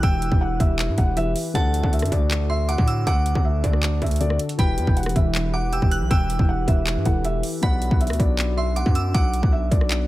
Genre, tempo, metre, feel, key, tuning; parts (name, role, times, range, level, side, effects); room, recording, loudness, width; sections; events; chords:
hip hop, trap; 158 BPM; 4/4; half-time; E minor; A4 = 440 Hz
felt-muted upright piano; melody; 0.0-10.1 s; D5 to G5; -28 LUFS; equal
glassy synth bell; second line; 0.0-9.5 s; A5 to F#6; -33 LUFS; right 3 dB; chorus, tape echo
dark concert grand piano; accompaniment; 0.0-10.1 s; B2 to D5; -32 LUFS; left 4 dB
warbly tape-like pad; sustained chords; 0.0-10.1 s; D3 to B4; -30 LUFS; right 1 dB; chorus, built-in reverb
distorted 808-style bass; bass; 0.0-10.1 s; E1 to A2; -23 LUFS; equal; distortion
trap drum kit; drums; 0.0-10.0 s; handclaps, hi-hat, kick drum, rim click; -21 LUFS; equal
digital ambience; -19 LUFS; side -16 dB against mid
0.0-10.1 A section
0.0 Em; 1.6 D; 4.6 Em; 7.6 Bm